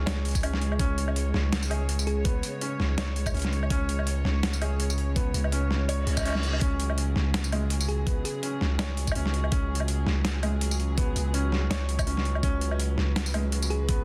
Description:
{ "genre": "half-time drum and bass", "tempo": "165 BPM", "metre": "4/4", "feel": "swing 56% on 16ths, half-time", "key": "unclear", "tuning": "A4 = 440 Hz", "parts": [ { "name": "dark chamber string section", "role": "sustained chords", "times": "0.0-14.0 s", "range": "C#3 to C#5", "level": "-38 LUFS", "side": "equal", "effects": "vintage 12-bit sampler grit, sidechain pumping" }, { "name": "felt-muted upright piano", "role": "arpeggios", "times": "0.0-14.0 s", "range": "G#3 to C#5", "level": "-37 LUFS", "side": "equal", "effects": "dub echo" }, { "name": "long sustained 808-style bass", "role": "bass", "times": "0.0-14.0 s", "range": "C#2", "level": "-30 LUFS", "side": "equal", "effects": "none" }, { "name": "boom bap sampler-style drum kit", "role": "drums", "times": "0.1-14.0 s", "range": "hi-hat, snare drum, tambourine, woodblock", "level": "-34 LUFS", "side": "equal", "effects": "overdrive" }, { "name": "electronic kick drum", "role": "drums", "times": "0.3-14.0 s", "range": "none", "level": "-30 LUFS", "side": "equal", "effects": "none" }, { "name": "thumb-piano-like synth pluck", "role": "melody", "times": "2.1-2.3, 7.9-8.6, 13.7-13.9 s", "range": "G#4", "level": "-39 LUFS", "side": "equal", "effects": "chorus, vintage 12-bit sampler grit, digital delay" }, { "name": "reverse cymbal", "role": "sound effects", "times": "6.0-6.6 s", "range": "none", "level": "-39 LUFS", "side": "equal", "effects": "none" } ], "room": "light reverb, digital ambience", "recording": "dense, heavily limited modern master", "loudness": "-27 LUFS", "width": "mono", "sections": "0.0-14.0 A section", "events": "reverse cymbal 6.0-6.6", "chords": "0.0 C#5" }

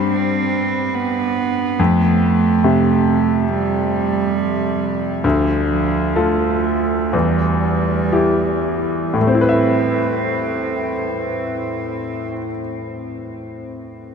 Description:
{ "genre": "neoclassical piano and strings", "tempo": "58-72 BPM", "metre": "4/4", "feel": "rubato", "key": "A minor", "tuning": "A4 = 440 Hz", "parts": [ { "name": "warm cello", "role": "second line", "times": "0.0-12.2 s", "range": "F3 to C4", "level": "-21 LUFS", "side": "right 7 dB", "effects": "none" }, { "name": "bright concert grand piano", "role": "accompaniment", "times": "0.0-14.1 s", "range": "D2 to E5", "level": "-18 LUFS", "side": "left 2 dB", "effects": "none" } ], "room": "wet huge ambient reverb, RT60 7.4 s", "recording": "in a vast, echoing space", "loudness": "-16 LUFS", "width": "side -6 dB against mid", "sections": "0.0-9.2 A section; 9.2-13.2 B section", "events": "slowing down 0.1-9.2", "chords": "0.0 C5/G; 1.8 F; 5.2 Dm; 7.1 Em; 9.2 Amadd9" }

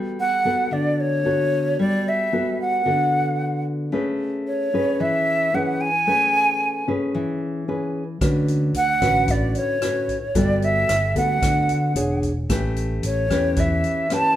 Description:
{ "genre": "bossa nova", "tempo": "112 BPM", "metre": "4/4", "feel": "straight", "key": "A major", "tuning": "A4 = 440 Hz", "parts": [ { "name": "nylon-string guitar", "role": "accompaniment", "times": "0.0-14.4 s", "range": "A2 to C#5", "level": "-23 LUFS", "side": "left 1 dB", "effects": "none" }, { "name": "breathy jazz flute", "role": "melody", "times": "0.2-14.4 s", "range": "C#5 to A5", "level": "-20 LUFS", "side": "right 1 dB", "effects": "none" }, { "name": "fingered electric bass", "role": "bass", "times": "8.2-13.8 s", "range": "E1 to E2", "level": "-24 LUFS", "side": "right 1 dB", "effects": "none" }, { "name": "swinging big-band drum kit", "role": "drums", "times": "8.2-14.2 s", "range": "hi-hat, kick drum, rim click", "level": "-28 LUFS", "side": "equal", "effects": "none" } ], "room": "moderate large studio reverb, RT60 1.0 s", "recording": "band playing live in one room", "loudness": "-19 LUFS", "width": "side -12 dB against mid", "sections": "0.0-14.4 A section", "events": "none", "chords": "0.0 Gmaj9; 3.9 Amaj9; 8.2 D6; 10.4 Gmaj9; 12.0 E13; 12.5 A9" }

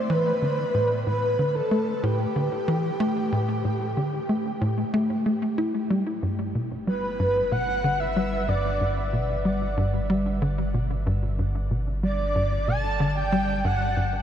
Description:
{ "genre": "ambient, sequencer-driven space music", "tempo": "93 BPM", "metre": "4/4", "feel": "straight", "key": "G major", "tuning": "A4 = 440 Hz", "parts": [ { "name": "breathy flute-like synth lead", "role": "melody", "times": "0.0-14.2 s", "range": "G4 to A5", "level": "-27 LUFS", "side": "right 1 dB", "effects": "ensemble chorus, tape echo" }, { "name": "tight sequencer bass", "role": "riff", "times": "0.0-14.2 s", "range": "G2 to E4", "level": "-25 LUFS", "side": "equal", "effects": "analog chorus, tape echo" }, { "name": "warm sub bass", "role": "bass", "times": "6.2-14.2 s", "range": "G1", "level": "-30 LUFS", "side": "equal", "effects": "none" } ], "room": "wet huge ambient reverb, RT60 8.2 s", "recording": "dreamy mix soaked in reverb", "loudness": "-22 LUFS", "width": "side -9 dB against mid", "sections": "0.0-6.2 A section; 6.2-14.2 B section", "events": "none", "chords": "0.0 A7(no3); 6.2 Gmaj7" }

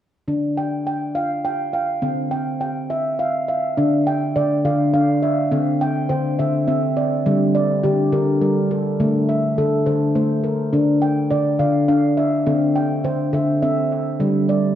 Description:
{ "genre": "world meditative", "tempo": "69 BPM (dotted quarters)", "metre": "6/8", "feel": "straight", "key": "D minor", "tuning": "A4 = 439 Hz", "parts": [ { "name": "handpan", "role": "arpeggios", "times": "0.3-14.8 s", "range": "D3 to G5", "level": "-17 LUFS", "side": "equal", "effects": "dub echo" } ], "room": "wet echo chamber reverb, RT60 1.4 s, small room ambience", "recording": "echo-heavy mix", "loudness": "-17 LUFS", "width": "side -11 dB against mid", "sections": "0.3-3.8 A section; 3.8-14.8 B section", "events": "none", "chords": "0.3 Dm; 2.0 C/D; 3.8 Dm; 5.5 C/D; 7.3 Gm/D; 9.0 Am/D; 10.7 Dm; 12.5 C/D; 14.2 G5/D" }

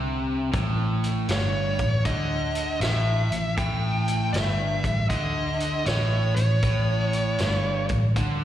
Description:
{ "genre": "blues rock power trio and southern rock", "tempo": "79 BPM", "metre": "4/4", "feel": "swing 66% on 8ths", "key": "unclear", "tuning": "A4 = 445 Hz", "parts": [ { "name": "cranked stack guitar", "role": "riff", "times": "0.0-8.4 s", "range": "G2 to D3", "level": "-29 LUFS", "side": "right 1 dB", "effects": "overdrive, spring reverb, slapback echo" }, { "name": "vintage muted picked electric bass", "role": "bass", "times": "0.0-8.4 s", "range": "G1 to D2", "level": "-25 LUFS", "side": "equal", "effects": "none" }, { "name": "vintage drum kit", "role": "drums", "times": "0.5-8.4 s", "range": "hi-hat, kick drum, snare drum", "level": "-31 LUFS", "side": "equal", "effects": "none" }, { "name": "dark smooth lead guitar", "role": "melody", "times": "1.3-7.9 s", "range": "C#5 to G5", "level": "-28 LUFS", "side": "equal", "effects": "overdrive, slapback echo" } ], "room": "little or no reverb", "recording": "live gig heard through the venue's PA, recital hall reverb", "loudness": "-22 LUFS", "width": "side -11 dB against mid", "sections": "0.0-8.4 A section", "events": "none", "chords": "0.0 A" }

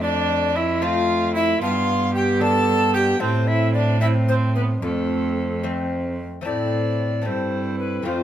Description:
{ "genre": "classical, renaissance-style consort dance", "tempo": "75 BPM (dotted quarters)", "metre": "6/8", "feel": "straight", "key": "unclear", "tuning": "A4 = 439 Hz", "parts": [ { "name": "bright tenor recorder", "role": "melody", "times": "0.0-8.2 s", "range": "A4 to A5", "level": "-26 LUFS", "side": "left 5 dB", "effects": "none" }, { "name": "rich viola", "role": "second line", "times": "0.0-8.2 s", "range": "A3 to A4", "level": "-24 LUFS", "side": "right 4 dB", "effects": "none" }, { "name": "lute", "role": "accompaniment", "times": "0.0-8.2 s", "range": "F2 to F4", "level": "-30 LUFS", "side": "left 5 dB", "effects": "none" }, { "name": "mellow trombone", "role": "accompaniment", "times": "0.0-8.2 s", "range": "A3 to C4", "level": "-26 LUFS", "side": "left 1 dB", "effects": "none" }, { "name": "rich cello", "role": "bass", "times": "0.0-8.2 s", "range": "F2 to A2", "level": "-24 LUFS", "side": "right 2 dB", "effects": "none" } ], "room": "moderate stone room reverb, RT60 1.0 s", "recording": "none", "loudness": "-19 LUFS", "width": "side -11 dB against mid", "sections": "0.0-6.5 A section; 6.5-8.2 B section", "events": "none", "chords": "0.0 F; 1.6 G; 3.2 Am; 4.8 F; 6.5 Am" }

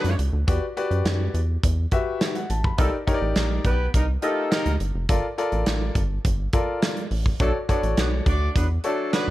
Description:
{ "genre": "early-eighties boogie funk", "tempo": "104 BPM", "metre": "4/4", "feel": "straight", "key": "unclear", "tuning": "A4 = 440 Hz", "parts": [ { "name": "mellow horn section", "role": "second line", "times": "0.0-9.3 s", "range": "F#3 to D5", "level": "-29 LUFS", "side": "right 1 dB", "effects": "none" }, { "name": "warm concert grand piano", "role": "accompaniment", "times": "0.0-9.3 s", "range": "Eb4 to B5", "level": "-27 LUFS", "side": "left 2 dB", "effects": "none" }, { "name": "rubbery square bass", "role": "bass", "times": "0.0-9.3 s", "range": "E#1 to F#2", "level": "-24 LUFS", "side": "equal", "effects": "none" }, { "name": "modern studio drum kit", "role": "drums", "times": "0.0-9.3 s", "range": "hi-hat, kick drum, snare drum", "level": "-24 LUFS", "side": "equal", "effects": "gated reverb" } ], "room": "small room reverb", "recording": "none", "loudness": "-21 LUFS", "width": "side -16 dB against mid", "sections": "0.0-9.3 A section", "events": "none", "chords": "0.5 Em9; 2.8 Cm9; 5.1 Gm9; 7.4 Bm9" }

